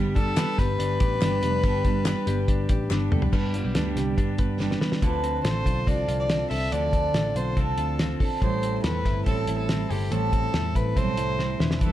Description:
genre	jangly indie pop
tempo	141 BPM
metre	4/4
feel	straight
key	A minor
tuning	A4 = 441 Hz
part	fingerpicked twelve-string acoustic guitar	accompaniment	0.0-11.9 s	G2 to B4	-30 LUFS	right 6 dB	none
part	direct-recorded clean electric guitar	arpeggios	0.0-11.9 s	A2 to B4	-32 LUFS	left 4 dB	none
part	picked electric bass	bass	0.0-11.9 s	E1 to G2	-28 LUFS	equal	none
part	warm violin	melody	0.2-11.9 s	G4 to E5	-29 LUFS	left 1 dB	none
part	cloth-damped thuddy drum kit	drums	0.2-11.9 s	crash cymbal, hi-hat, kick drum, snare drum, toms	-26 LUFS	equal	none
part	group handclap	percussion	0.4-3.0 s	none	-40 LUFS	left 7 dB	none
room	moderate studio reverb, RT60 0.8 s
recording	dark, warm production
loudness	-22 LUFS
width	side -13 dB against mid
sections	0.0-3.3 A section; 3.3-5.0 B section; 5.0-11.9 C section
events	drum fill 2.9-3.3, 4.6-5.0, 11.4-11.8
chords	0.0 G; 5.0 Dm7; 8.4 Am7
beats	0.37 0.79 1.22 | 1.64 2.06 2.48 2.90 | 3.33 3.75 4.17 4.60 | 5.02 5.45 5.87 6.29 | 6.72 7.14 7.57 7.99 | 8.42 8.84 9.27 9.69 | 10.12 10.54 10.97 11.39 | 11.82

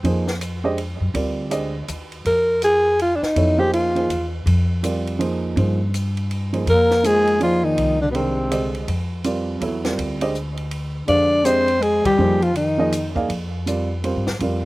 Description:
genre	modal jazz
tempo	163 BPM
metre	3/4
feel	swing 63% on 8ths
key	unclear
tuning	A4 = 440 Hz
part	warm upright piano	accompaniment	0.0-14.6 s	D3 to F5	-24 LUFS	right 3 dB	slapback echo
part	upright bass	bass	0.0-14.7 s	C2 to G2	-24 LUFS	equal	none
part	compact cocktail drum kit	drums	0.0-14.5 s	hi-hat, kick drum, ride cymbal, snare drum	-33 LUFS	equal	none
part	growling alto saxophone	melody	2.3-4.3, 6.7-8.8, 11.1-13.1 s	B3 to D5	-18 LUFS	equal	none
part	mellow bass clarinet	second line	6.7-8.7, 11.1-13.1 s	B2 to D4	-23 LUFS	left 3 dB	none
room	little or no reverb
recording	recorded outdoors, with no room sound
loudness	-18 LUFS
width	side -19 dB against mid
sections	0.0-14.7 A section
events	band accent 12.0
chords	0.0 Gm/F; 2.3 Fm7; 4.5 Gm/F; 6.7 Fm9; 8.9 Gm; 11.1 Fm9; 13.3 Gm/F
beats	| 0.04 0.41 0.78 | 1.15 1.51 1.88 | 2.25 2.62 2.99 | 3.36 3.72 4.09 | 4.46 4.83 5.20 | 5.56 5.93 6.30 | 6.67 7.04 7.41 | 7.77 8.14 8.51 | 8.88 9.24 9.61 | 9.98 10.35 10.72 | 11.09 11.45 11.82 | 12.19 12.56 12.93 | 13.29 13.66 14.03 | 14.40

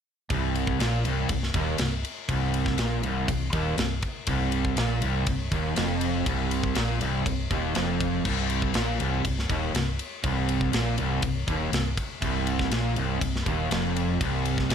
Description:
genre	hard rock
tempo	121 BPM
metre	4/4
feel	straight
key	unclear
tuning	A4 = 440 Hz
part	distorted electric guitar	riff	0.3-14.7 s	C2 to Bb2	-30 LUFS	left 12 dB	distortion
part	overdriven semi-hollow guitar	riff	0.3-14.7 s	C2 to Bb2	-29 LUFS	right 9 dB	none
part	hollow-body short-scale fingered electric bass	bass	0.3-14.7 s	C1 to Bb1	-30 LUFS	equal	none
part	tight metal drum kit	drums	0.3-14.7 s	crash cymbal, kick drum, ride cymbal, snare drum	-30 LUFS	left 1 dB	none
room	light reverb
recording	none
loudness	-24 LUFS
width	side -8 dB against mid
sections	0.3-14.7 A section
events	none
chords	0.3 Cmadd11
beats	| 0.30 0.80 1.29 1.79 | 2.29 2.78 3.28 3.78 | 4.27 4.77 5.27 5.76 | 6.26 6.76 7.25 7.75 | 8.25 8.74 9.24 9.74 | 10.24 10.73 11.23 11.73 | 12.22 12.72 13.22 13.71 | 14.21 14.71

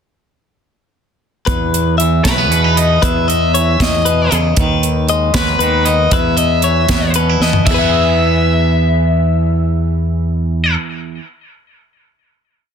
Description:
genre	math rock and midwest emo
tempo	77 BPM (dotted quarters)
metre	6/8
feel	straight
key	E major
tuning	A4 = 440 Hz
part	twangy electric guitar	accompaniment	1.5-11.4 s	E2 to G#4	-20 LUFS	right 9 dB	none
part	direct-recorded clean electric guitar	arpeggios	1.5-10.9 s	G#4 to E5	-19 LUFS	left 9 dB	none
part	growling fingered electric bass	bass	1.5-10.8 s	B1 to E2	-15 LUFS	equal	overdrive
part	crisp fusion drum kit	drums	1.5-7.8 s	crash cymbal, hi-hat, kick drum, snare drum, toms	-18 LUFS	right 1 dB	none
part	overdriven electric guitar	melody	2.2-10.7 s	B4 to E5	-18 LUFS	left 3 dB	spring reverb, tape echo
room	light reverb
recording	dense, heavily limited modern master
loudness	-11 LUFS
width	side -7 dB against mid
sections	1.5-7.7 A section; 7.7-10.8 final chord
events	drum fill 7.4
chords	1.5 E5; 4.6 G#m/D#; 6.1 E5; 7.7 E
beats	| 1.47 2.24 | 3.02 3.79 | 4.56 5.34 | 6.12 6.89 | 7.67 8.45 | 9.22 10.00

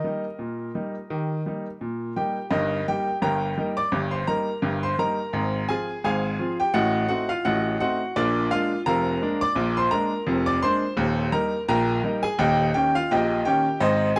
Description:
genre	ragtime piano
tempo	85 BPM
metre	2/4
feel	swing 56% on 16ths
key	Eb major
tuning	A4 = 440 Hz
part	bright baby grand piano	solo	0.0-14.2 s	Eb1 to D6	-24 LUFS	equal	none
room	light reverb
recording	none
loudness	-24 LUFS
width	mono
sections	0.0-2.5 A section; 2.5-14.2 B section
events	none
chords	0.0 Eb; 2.5 Eb/G; 5.3 Fm/Ab; 6.8 Adim7; 8.2 Bb7; 11.0 Eb; 12.4 Eb7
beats	0.39 | 1.10 1.81 | 2.52 3.22 | 3.93 4.63 | 5.34 6.04 | 6.75 7.46 | 8.16 8.87 | 9.57 10.28 | 10.98 11.69 | 12.39 13.09 | 13.80

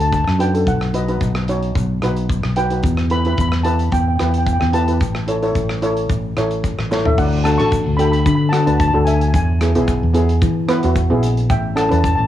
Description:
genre	calypso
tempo	111 BPM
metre	4/4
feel	straight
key	D major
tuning	A4 = 442 Hz
part	steel pan	melody	0.0-12.2 s	D5 to C#6	-23 LUFS	left 1 dB	cassette tape, plate reverb, tape echo
part	steel pan	accompaniment	0.0-12.2 s	B3 to E5	-20 LUFS	right 1 dB	cassette tape, plate reverb
part	fingered electric bass	bass	0.0-12.3 s	A1 to E3	-18 LUFS	left 1 dB	none
part	modern studio drum kit	drums	0.0-12.2 s	crash cymbal, hi-hat, kick drum, rim click, snare drum, toms	-23 LUFS	equal	cassette tape
part	tube shaker	percussion	0.1-12.2 s	none	-42 LUFS	left 5 dB	none
room	light reverb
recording	home recording on cassette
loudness	-15 LUFS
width	side -12 dB against mid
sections	0.0-7.2 A section; 7.2-12.3 B section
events	drum fill 6.9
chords	0.0 D; 0.7 B; 2.8 Em; 5.0 A; 7.2 D; 9.3 E; 11.5 A7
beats	0.12 | 0.67 1.21 1.75 2.29 | 2.84 3.38 3.92 4.46 | 5.01 5.55 6.09 6.63 | 7.17 7.72 8.26 8.80 | 9.34 9.88 10.42 10.96 | 11.50 12.04

